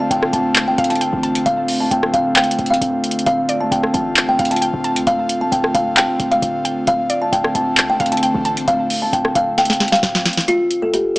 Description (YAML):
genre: hip hop, trap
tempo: 133 BPM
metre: 4/4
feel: half-time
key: D minor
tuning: A4 = 439 Hz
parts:
  - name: kalimba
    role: melody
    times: 0.0-11.2 s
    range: F4 to A5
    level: -18 LUFS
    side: equal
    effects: none
  - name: mallet-like synth pluck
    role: second line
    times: 0.0-10.0 s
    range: D5 to A5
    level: -25 LUFS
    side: right 1 dB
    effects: chorus, tape echo
  - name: airy breathy pad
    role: sustained chords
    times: 0.0-10.4 s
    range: D3 to F4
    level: -22 LUFS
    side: left 1 dB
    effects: chorus
  - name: short 808-style bass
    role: bass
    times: 0.1-10.2 s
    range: C1 to D2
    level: -28 LUFS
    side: equal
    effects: none
  - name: booming analog drum machine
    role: drums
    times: 0.1-11.2 s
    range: handclaps, hi-hat, rim click, snare drum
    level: -18 LUFS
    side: equal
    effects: none
room: moderate recital hall reverb, RT60 1.6 s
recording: small speaker sound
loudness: -14 LUFS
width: side -22 dB against mid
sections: 0.0-10.5 A section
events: drum fill 9.6-10.5; kick muted 10.5-11.2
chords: 0.0 Dm7; 10.5 N.C.